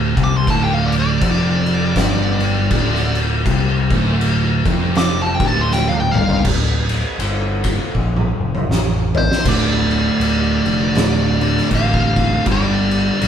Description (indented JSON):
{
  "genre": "stoner and doom metal",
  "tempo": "80 BPM",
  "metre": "4/4",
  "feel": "swing 60% on 8ths",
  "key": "D minor",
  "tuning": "A4 = 440 Hz",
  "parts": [
    { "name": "thick fuzz guitar", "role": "riff", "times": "0.0-13.3 s", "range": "D2 to G3", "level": "-22 LUFS", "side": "left 6 dB", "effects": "distortion" },
    { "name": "thick fuzz guitar", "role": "riff", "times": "0.0-13.3 s", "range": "D2 to G3", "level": "-21 LUFS", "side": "right 6 dB", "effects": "distortion" },
    { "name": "overdriven picked electric bass", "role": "bass", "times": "0.0-13.3 s", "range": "D1 to C2", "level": "-20 LUFS", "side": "equal", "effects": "none" },
    { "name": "fuzz lead guitar", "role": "melody", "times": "0.2-13.3 s", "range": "C5 to D6", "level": "-22 LUFS", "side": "equal", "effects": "wah, distortion" },
    { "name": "oversized low-tuned drum kit", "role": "drums", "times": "0.2-13.3 s", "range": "crash cymbal, kick drum, ride cymbal, snare drum, toms", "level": "-19 LUFS", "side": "equal", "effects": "none" }
  ],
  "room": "light reverb",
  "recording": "band playing live in one room",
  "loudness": "-14 LUFS",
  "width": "side -8 dB against mid",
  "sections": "0.0-6.5 A section; 6.5-9.5 B section; 9.5-13.3 C section",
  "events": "lead electric guitar solo 0.0-6.5; drum fill 5.7-6.5, 8.0-9.5",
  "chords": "0.0 Dm; 12.5 G5"
}